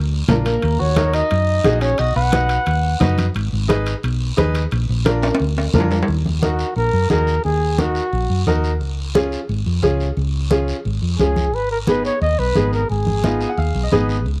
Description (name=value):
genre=latin, cumbia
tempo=176 BPM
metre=4/4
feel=straight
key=Eb minor from 6.1 s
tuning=A4 = 438 Hz
part: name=hollow-body short-scale fingered electric bass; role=bass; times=0.0-14.4 s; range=Ab1 to Gb2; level=-22 LUFS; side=equal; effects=none
part: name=breathy flugelhorn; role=melody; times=0.3-3.1, 6.4-8.5, 11.2-13.9 s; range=Gb4 to F#5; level=-24 LUFS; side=equal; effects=slapback echo
part: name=clean electric guitar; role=second line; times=0.3-3.1 s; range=Bb3 to B4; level=-29 LUFS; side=equal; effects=none
part: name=bright upright piano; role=accompaniment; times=0.3-14.2 s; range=Cb4 to Ab5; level=-23 LUFS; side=equal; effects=none
part: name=congas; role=percussion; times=0.3-14.4 s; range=none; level=-24 LUFS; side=equal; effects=none
part: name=guiro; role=percussion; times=0.3-14.4 s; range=none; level=-37 LUFS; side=equal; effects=none
part: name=timbales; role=percussion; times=0.3-6.1 s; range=none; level=-27 LUFS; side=equal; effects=none
room=small room reverb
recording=dry, close 1970s-style studio recording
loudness=-19 LUFS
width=mono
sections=0.0-6.1 A section; 6.1-14.4 B section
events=drum fill 5.2-6.1; upright piano fill 13.2-14.3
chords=0.0 Bb; 0.6 Ebm; 2.0 B; 3.4 Abm; 4.7 Bb; 6.1 Ebm; 8.8 Db; 11.5 Abm